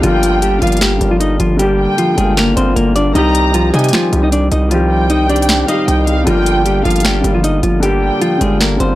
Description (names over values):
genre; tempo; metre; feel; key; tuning
hip hop, trap; 154 BPM; 4/4; half-time; unclear; A4 = 438 Hz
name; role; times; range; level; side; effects
clean electric guitar; melody; 0.0-9.0 s; F3 to Eb5; -16 LUFS; equal; low-pass filter, analog delay
warm symphonic violin section; second line; 0.0-8.6 s; F5 to Bb5; -20 LUFS; equal; analog delay
dark baby grand piano; accompaniment; 0.0-9.0 s; D3 to G4; -17 LUFS; left 1 dB; low-pass filter
distorted 808-style bass; bass; 0.0-9.0 s; G1 to C3; -16 LUFS; equal; distortion
trap drum kit; drums; 0.0-8.9 s; finger snaps, hi-hat, snare drum; -18 LUFS; equal; none
room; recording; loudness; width
digital ambience; dry, gritty hardware recording; -11 LUFS; side -15 dB against mid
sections
0.0-9.0 A section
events
none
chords
0.0 Gm7; 3.2 Cm; 6.3 Gm7